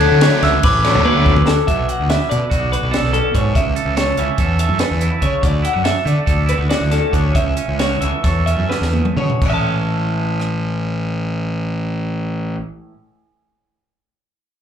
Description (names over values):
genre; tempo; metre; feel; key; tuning
math rock and midwest emo; 244-288 BPM (eighths); 9/8; straight; A major; A4 = 440 Hz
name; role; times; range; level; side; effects
glockenspiel with rubber mallets; melody; 0.0-1.4 s; D6 to F#6; -21 LUFS; right 2 dB; slapback echo
twelve-string electric guitar; arpeggios; 0.0-12.7 s; A4 to A5; -21 LUFS; left 3 dB; slapback echo
cranked stack guitar; riff; 0.0-1.3 s; D3 to D4; -19 LUFS; equal; overdrive, spring reverb, slapback echo
fuzz fingered electric bass; bass; 0.0-12.6 s; A1 to D3; -18 LUFS; equal; overdrive
compact cocktail drum kit; drums; 0.0-10.5 s; crash cymbal, hi-hat, kick drum, ride cymbal, rim click, snare drum, toms; -20 LUFS; equal; slapback echo
twangy electric guitar; accompaniment; 1.7-13.0 s; A2 to B4; -24 LUFS; right 9 dB; spring reverb, slapback echo
room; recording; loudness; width
light reverb, small room ambience; live gig heard through the venue's PA, club reverb; -15 LUFS; side -8 dB against mid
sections
0.0-1.7 A section; 1.7-9.4 B section; 9.4-13.8 C section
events
drum fill 1.0-1.7, 8.7-9.4; slowing down 5.9-9.4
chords
0.0 Dmaj9; 1.7 Bm9; 3.6 A6/C#; 5.4 Dmaj7; 7.3 A6/C#; 9.4 Amaj7